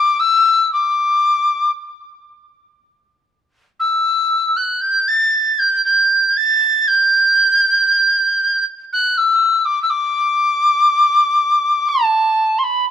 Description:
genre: celtic folk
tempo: 59 BPM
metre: 4/4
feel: rubato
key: unclear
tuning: A4 = 441 Hz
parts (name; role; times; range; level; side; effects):
- tin whistle; solo; 0.0-12.9 s; A5 to A6; -13 LUFS; equal; none
room: light reverb, small room ambience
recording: rough home demo mix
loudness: -13 LUFS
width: side -9 dB against mid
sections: 0.0-12.9 A section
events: none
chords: none

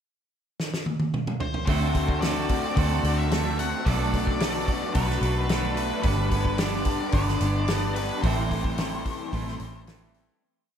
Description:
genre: rock, shoegaze and dream pop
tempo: 110 BPM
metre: 4/4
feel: straight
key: D mixolydian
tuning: A4 = 444 Hz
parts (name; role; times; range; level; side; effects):
- loose indie drum kit; drums; 0.6-10.3 s; hi-hat, kick drum, snare drum, toms; -28 LUFS; equal; none
- octave-fuzz lead guitar; melody; 1.4-9.8 s; B4 to F#5; -33 LUFS; left 2 dB; distortion, diffuse ambient delay
- picked twelve-string acoustic guitar; arpeggios; 1.7-10.4 s; E3 to G4; -37 LUFS; right 6 dB; wide subtle chorus, diffuse ambient delay
- raw garage guitar; riff; 1.7-10.4 s; G2 to A4; -31 LUFS; left 10 dB; overdrive, wide subtle chorus
- twangy electric guitar; riff; 1.7-10.4 s; G2 to A4; -30 LUFS; right 8 dB; reverse reverb
- vintage muted fingered electric bass; bass; 1.7-10.3 s; G1 to D2; -28 LUFS; equal; none
room: moderate lush hall reverb, RT60 1.9 s, studio ambience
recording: dreamy mix soaked in reverb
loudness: -23 LUFS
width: side -8 dB against mid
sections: 0.0-1.7 pickup bar; 1.7-10.4 verse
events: drum fill 0.6-1.7; fade-out 8.2-10.4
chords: 0.0 N.C.; 1.7 D7; 3.9 Bm7; 6.0 G; 8.2 Am7

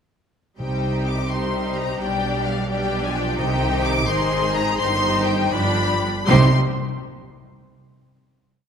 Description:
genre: quick classical-period movement for symphony orchestra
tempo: 84 BPM (dotted quarters)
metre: 6/8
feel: rubato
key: C minor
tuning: A4 = 440 Hz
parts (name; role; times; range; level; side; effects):
- clear studio violin section; melody; 0.6-6.6 s; F5 to D6; -25 LUFS; left 4 dB; none
- rich studio violin section; second line; 0.6-6.6 s; G4 to D5; -26 LUFS; left 4 dB; none
- rich symphonic viola section; accompaniment; 0.6-6.5 s; Eb3 to Eb4; -26 LUFS; right 2 dB; none
- rich studio cello section; bass; 0.6-6.6 s; G2 to C3; -26 LUFS; right 2 dB; none
- rich studio double bass section; bass; 0.6-6.6 s; G1 to C2; -26 LUFS; right 3 dB; none
- timpani; percussion; 0.6-1.3, 3.4-4.0, 6.3-6.5 s; C3; -24 LUFS; equal; none
room: wet concert hall reverb, RT60 1.9 s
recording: none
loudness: -18 LUFS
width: side -7 dB against mid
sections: 0.6-6.3 A section; 6.3-7.7 final chord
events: none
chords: 0.6 Cm; 2.0 G/B; 3.4 Cm; 4.1 Ab; 4.8 Cm/G; 5.5 G7; 6.3 Cm

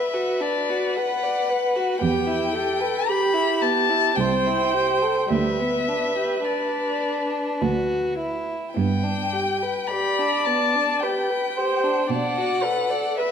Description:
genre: classical, slow romantic movement for string quartet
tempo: 54 BPM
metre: 3/4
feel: uneven beats, rubato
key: G major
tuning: A4 = 438 Hz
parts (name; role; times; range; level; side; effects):
- warm violin; melody; 0.0-13.3 s; D5 to B5; -25 LUFS; left 6 dB; none
- dark violin; second line; 0.0-13.3 s; G3 to D5; -26 LUFS; left 1 dB; none
- dark viola; accompaniment; 0.0-13.3 s; G4 to D5; -25 LUFS; right 4 dB; none
- warm cello; bass; 2.0-13.0 s; C2 to B2; -26 LUFS; right 4 dB; none
room: wet recital hall reverb, RT60 1.7 s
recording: none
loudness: -20 LUFS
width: side -7 dB against mid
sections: 0.0-13.3 A section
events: none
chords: 0.0 Bm; 2.0 Em; 4.2 Am7/C; 5.3 G/D; 8.8 G; 12.1 Bm

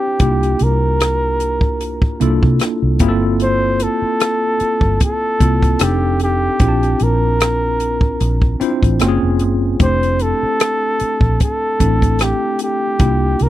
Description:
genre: R&B, neo-soul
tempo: 75 BPM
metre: 4/4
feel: swing 54% on 16ths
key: F major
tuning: A4 = 439 Hz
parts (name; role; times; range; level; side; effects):
- breathy flugelhorn; melody; 0.0-13.5 s; G4 to C5; -18 LUFS; equal; none
- barky tine electric piano; accompaniment; 0.0-13.5 s; A3 to A5; -20 LUFS; left 1 dB; medium stereo tremolo
- vintage muted fingered electric bass; bass; 0.2-13.5 s; F1 to C3; -17 LUFS; equal; none
- compact cocktail drum kit; drums; 0.2-13.5 s; hi-hat, kick drum, rim click; -16 LUFS; equal; none
room: little or no reverb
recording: dry, close 1970s-style studio recording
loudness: -13 LUFS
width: side -13 dB against mid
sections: 0.0-13.5 A section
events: none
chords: 0.2 C9sus4; 3.0 Gm11; 5.8 F7; 6.6 Bbmaj7; 9.0 Gbmaj9; 9.8 Fmaj9

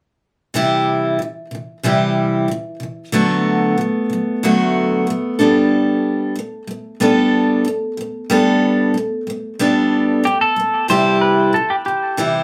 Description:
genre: pop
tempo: 93 BPM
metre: 4/4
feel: straight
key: G major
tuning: A4 = 439 Hz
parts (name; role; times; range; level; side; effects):
- picked steel-string acoustic guitar; accompaniment; 0.5-12.4 s; C3 to A4; -18 LUFS; equal; none
- clean lap steel guitar; melody; 10.3-12.4 s; G4 to C5; -19 LUFS; equal; tape echo
room: wet studio ambience, RT60 0.5 s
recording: band playing live in one room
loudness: -17 LUFS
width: mono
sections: 0.5-10.9 A section; 10.9-12.4 B section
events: none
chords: 0.5 C; 3.1 D6; 5.4 Gadd9; 10.9 C

